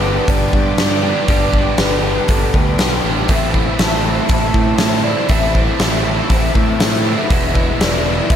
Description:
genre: rock, shoegaze and dream pop.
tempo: 120 BPM.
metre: 4/4.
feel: straight.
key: A minor.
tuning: A4 = 440 Hz.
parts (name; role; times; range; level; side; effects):
hollow clarinet-like synth lead; melody; 0.0-8.4 s; A4 to A5; -23 LUFS; equal; chorus, digital delay.
string machine, cellos; sustained chords; 0.0-8.4 s; B4 to E6; -27 LUFS; equal; none.
biting overdriven guitar; riff; 0.0-8.4 s; E2 to G4; -21 LUFS; left 10 dB; ensemble chorus.
biting overdriven guitar; riff; 0.0-8.4 s; E2 to G4; -21 LUFS; right 12 dB; reverse reverb.
growling fingered electric bass; bass; 0.0-8.4 s; E1 to A2; -20 LUFS; equal; overdrive.
huge arena drum kit; drums; 0.3-8.4 s; hi-hat, kick drum, snare drum; -16 LUFS; equal; none.
room: light reverb.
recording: none.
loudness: -13 LUFS.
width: side -9 dB against mid.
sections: 0.0-8.4 A section.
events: none.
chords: 0.0 Gadd9; 3.3 Am; 7.3 E.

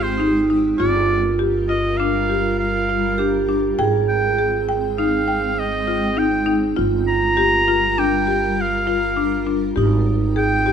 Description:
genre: contemporary instrumental, chamber music in an uneven meter.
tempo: 100 BPM.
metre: 5/4.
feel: straight.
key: G phrygian.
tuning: A4 = 440 Hz.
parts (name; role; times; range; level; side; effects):
clear oboe; melody; 0.0-10.7 s; C5 to Bb5; -21 LUFS; right 1 dB; none.
vibraphone with medium mallets; second line; 0.0-10.7 s; Eb4 to Ab4; -22 LUFS; right 5 dB; none.
granular cloud pad; sustained chords; 0.0-10.7 s; G3 to G5; -27 LUFS; left 1 dB; built-in reverb.
buzzing marimba with hard mallets; arpeggios; 0.0-10.7 s; D4 to G5; -22 LUFS; left 6 dB; none.
upright bass; bass; 0.0-10.7 s; G1 to Ab1; -25 LUFS; right 2 dB; none.
room: moderate recital hall reverb, RT60 1.6 s.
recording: close, detailed microphones.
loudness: -16 LUFS.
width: side -7 dB against mid.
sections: 0.0-10.7 A section.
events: none.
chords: 0.0 Abmaj7; 0.8 Gm7; 3.8 Abmaj7; 6.8 Gm7; 9.8 Abmaj7.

